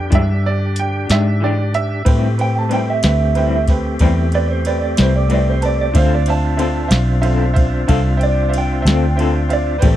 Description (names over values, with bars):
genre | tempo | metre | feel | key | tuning
slow blues | 62 BPM (dotted quarters) | 12/8 | straight | A minor | A4 = 440 Hz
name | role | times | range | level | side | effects
bright upright piano | accompaniment | 0.0-10.0 s | D3 to A5 | -25 LUFS | right 5 dB | none
bright tonewheel organ | sustained chords | 0.0-10.0 s | A3 to G4 | -24 LUFS | equal | slow rotary speaker, overdrive
vintage muted fingered electric bass | bass | 0.0-10.0 s | A1 to A2 | -17 LUFS | equal | none
electric guitar through a small old amp | accompaniment | 0.1-10.0 s | A2 to A4 | -21 LUFS | left 6 dB | tremolo
soft vintage rhythm box | drums | 0.1-10.0 s | hi-hat, kick drum, ride cymbal, snare drum | -17 LUFS | equal | none
electric slide guitar | melody | 2.4-10.0 s | A4 to A5 | -21 LUFS | right 4 dB | none
room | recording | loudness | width
little or no reverb | dry, close 1970s-style studio recording | -14 LUFS | side -12 dB against mid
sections
0.0-2.1 A section; 2.1-10.0 B section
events
upright piano solo 0.0-2.1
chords
0.0 E7#9; 2.1 Am7; 6.0 Dm7